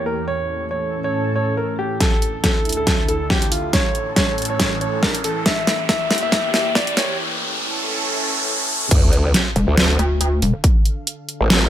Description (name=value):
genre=heavy wobble dubstep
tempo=139 BPM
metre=4/4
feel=swing 55% on 16ths, half-time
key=D harmonic minor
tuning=A4 = 437 Hz
part: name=clear concert grand piano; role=melody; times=0.0-7.1 s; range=F4 to E5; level=-23 LUFS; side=equal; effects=tape echo
part: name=lush unison pad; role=sustained chords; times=0.0-11.7 s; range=D2 to F5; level=-27 LUFS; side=right 1 dB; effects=chorus, sidechain pumping
part: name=dubstep drum kit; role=drums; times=2.0-11.6 s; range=crash cymbal, hi-hat, snare drum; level=-19 LUFS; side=equal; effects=overdrive, low-pass filter on snare, low-pass filter on hats, low-pass filter on cymbals, low-pass filter on room
part: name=electronic kick drum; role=drums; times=2.0-10.7 s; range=none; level=-19 LUFS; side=equal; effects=overdrive
part: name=riser and sub drop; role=sound effects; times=3.2-10.6 s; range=none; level=-25 LUFS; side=equal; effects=none
part: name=growl bass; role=bass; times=8.9-11.7 s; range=A1 to D2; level=-17 LUFS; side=equal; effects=chorus, overdrive
part: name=pulsing pluck wobble bass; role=bass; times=9.6-10.5 s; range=E1 to D2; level=-17 LUFS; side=equal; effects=chorus, overdrive
room=light reverb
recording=high-pass filter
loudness=-17 LUFS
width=side -11 dB against mid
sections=0.0-2.0 A section; 2.0-8.9 B section; 8.9-11.7 C section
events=build-up 2.0-8.9; drum fill 2.0-7.2; filter sweep 2.0-8.9; riser 3.2-8.9; break 7.2-8.9; drop 8.9-11.7; impact 8.9-10.6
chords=0.3 A; 2.0 Dsus2; 3.7 A; 5.5 Edim; 7.2 A; 8.9 Dm